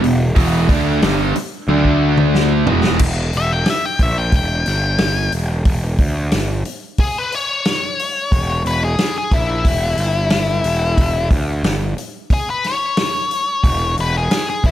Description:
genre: blues rock power trio and southern rock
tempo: 90 BPM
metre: 4/4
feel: straight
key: unclear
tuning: A4 = 440 Hz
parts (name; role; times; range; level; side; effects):
- biting overdriven guitar; riff; 0.0-3.0 s; E2 to D4; -16 LUFS; right 1 dB; none
- fuzz picked electric bass; bass; 0.0-14.7 s; E1 to D2; -19 LUFS; equal; overdrive
- vintage drum kit; drums; 0.0-14.7 s; crash cymbal, hi-hat, kick drum, snare drum, toms; -19 LUFS; equal; none
- octave-fuzz lead guitar; melody; 3.4-14.7 s; E4 to G5; -19 LUFS; left 3 dB; distortion
room: studio reverb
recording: none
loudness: -15 LUFS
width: side -12 dB against mid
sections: 0.0-3.0 A section; 3.0-14.7 B section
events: drum fill 1.7-3.0; lead electric guitar solo 3.0-14.7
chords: 0.0 E5; 1.7 D5; 2.7 E5; 3.0 Edim; 4.7 N.C.; 5.3 E5; 10.0 Em/G; 10.6 E5

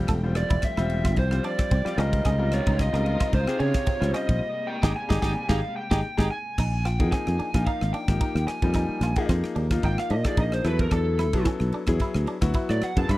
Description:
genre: electric jazz fusion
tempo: 111 BPM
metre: 4/4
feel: swing 54% on 16ths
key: unclear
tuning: A4 = 440 Hz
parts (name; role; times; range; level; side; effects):
- bright baby grand piano; accompaniment; 0.0-13.1 s; C3 to C5; -30 LUFS; left 3 dB; none
- warm symphonic string section; sustained chords; 0.0-6.6 s; C3 to G5; -37 LUFS; left 1 dB; none
- electric guitar at the edge of break-up; stabs; 0.0-13.2 s; C4 to A4; -35 LUFS; right 4 dB; lush chorus
- sustaining fretless electric bass; bass; 0.0-13.2 s; E1 to Db3; -25 LUFS; equal; none
- modern studio drum kit; drums; 0.1-13.2 s; crash cymbal, kick drum, ride cymbal, rim click, snare drum; -26 LUFS; equal; none
- lead guitar through a small cranked amp; melody; 0.4-13.2 s; A4 to B5; -30 LUFS; right 1 dB; overdrive, slapback echo
room: little or no reverb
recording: dry, close 1970s-style studio recording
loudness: -22 LUFS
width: side -17 dB against mid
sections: 0.0-6.6 A section; 6.6-13.2 A section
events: lead electric guitar solo 0.0-13.2; band accent 4.4-6.6; drum fill 5.5-6.6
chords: 0.0 Fmaj9; 2.0 Dbmaj9; 4.4 Abmaj9; 6.6 Bb7sus4; 10.7 E9sus4

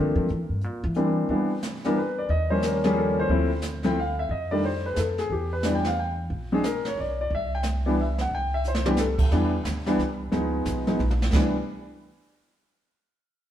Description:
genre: jazz piano trio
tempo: 179 BPM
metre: 3/4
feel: swing 63% on 8ths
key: C major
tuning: A4 = 445 Hz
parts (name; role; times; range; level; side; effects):
- warm concert grand piano; melody; 0.0-11.5 s; Eb3 to G5; -25 LUFS; left 1 dB; none
- upright bass; bass; 0.0-11.5 s; Bb1 to F3; -28 LUFS; equal; none
- jazz brush drum kit; drums; 0.3-11.7 s; brushed snare drum, crash cymbal, hi-hat, kick drum, snare drum, toms; -29 LUFS; right 2 dB; none
room: wet stone room reverb, RT60 1.3 s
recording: band playing live in one room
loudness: -23 LUFS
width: side -10 dB against mid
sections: 0.0-1.3 A section; 1.3-9.3 B section; 9.3-11.3 C section; 11.3-12.3 D section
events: upright bass solo 0.0-1.3; drum fill 8.7-9.0, 11.0-11.3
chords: 0.3 C7; 1.3 Cmaj7; 2.3 Eb9; 3.3 Dm7; 4.3 F13; 5.3 Em7; 6.3 Bb7; 7.3 C; 10.3 Db7; 11.3 N.C.

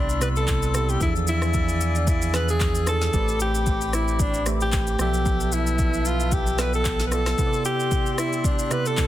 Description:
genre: amapiano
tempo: 113 BPM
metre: 4/4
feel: swing 55% on 16ths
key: C major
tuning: A4 = 439 Hz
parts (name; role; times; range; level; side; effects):
- breathy alto saxophone; melody; 0.0-9.1 s; D4 to B4; -26 LUFS; left 1 dB; tape echo
- tine electric piano; accompaniment; 0.0-9.1 s; C3 to G5; -29 LUFS; right 5 dB; none
- mellow flute section; sustained chords; 0.0-9.1 s; C4 to E6; -32 LUFS; left 2 dB; none
- round analog bass; bass; 0.0-7.3 s; A1 to E2; -25 LUFS; equal; none
- deep house drum kit; drums; 0.1-9.1 s; handclaps, kick drum, rim click, shaker, snare drum; -25 LUFS; equal; none
room: light reverb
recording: dense, heavily limited modern master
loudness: -20 LUFS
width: side -13 dB against mid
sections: 0.0-9.1 A section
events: none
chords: 0.0 Cmaj9; 1.0 E7b9; 3.1 Am11; 5.0 G13/B; 7.4 Cmaj9

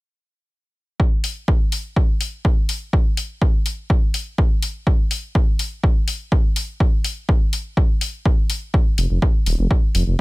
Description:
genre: melodic techno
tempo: 124 BPM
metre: 4/4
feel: straight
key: unclear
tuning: A4 = 440 Hz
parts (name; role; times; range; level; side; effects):
- electronic kick drum; drums; 1.0-9.8 s; none; -17 LUFS; equal; none
- electronic hi-hat; drums; 1.2-10.0 s; none; -26 LUFS; left 3 dB; none
- dark detuned saw bass; bass; 9.0-10.2 s; Eb1 to F1; -17 LUFS; equal; sidechain pumping
room: little or no reverb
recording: none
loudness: -17 LUFS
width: side -22 dB against mid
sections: 1.0-10.2 A section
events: none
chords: none

